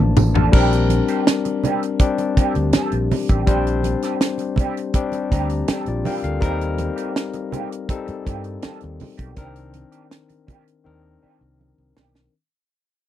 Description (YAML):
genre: lush 1970s-style soul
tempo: 81 BPM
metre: 4/4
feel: straight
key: Bb major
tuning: A4 = 439 Hz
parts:
  - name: barky tine electric piano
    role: accompaniment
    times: 0.0-12.3 s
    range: Eb3 to Bb5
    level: -23 LUFS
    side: left 6 dB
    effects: overdrive
  - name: electric guitar through a small old amp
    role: riff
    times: 0.0-12.2 s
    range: Eb3 to A4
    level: -28 LUFS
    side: right 9 dB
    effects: wah
  - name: overdriven fingered electric bass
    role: bass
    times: 0.0-12.3 s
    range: A1 to G2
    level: -22 LUFS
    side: right 1 dB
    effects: none
  - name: tight funk drum kit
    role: drums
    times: 0.2-12.3 s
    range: crash cymbal, hi-hat, kick drum, snare drum, toms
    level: -19 LUFS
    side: right 1 dB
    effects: none
  - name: congas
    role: percussion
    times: 0.2-12.1 s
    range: none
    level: -25 LUFS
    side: right 5 dB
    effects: none
room: little or no reverb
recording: dry, close 1970s-style studio recording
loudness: -18 LUFS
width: side -12 dB against mid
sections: 0.5-12.3 A section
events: drum fill 0.0-0.5, 10.9-12.3; fade-out 0.5-12.3; tine electric piano fill 4.9-6.4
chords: 0.0 Bbmaj7; 0.5 Bb69; 6.4 Eb6; 9.4 Cm9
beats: | 0.53 1.27 2.00 2.74 | 3.48 4.21 4.95 5.68 | 6.42 7.16 7.90 8.63 | 9.37 10.11 10.85 11.59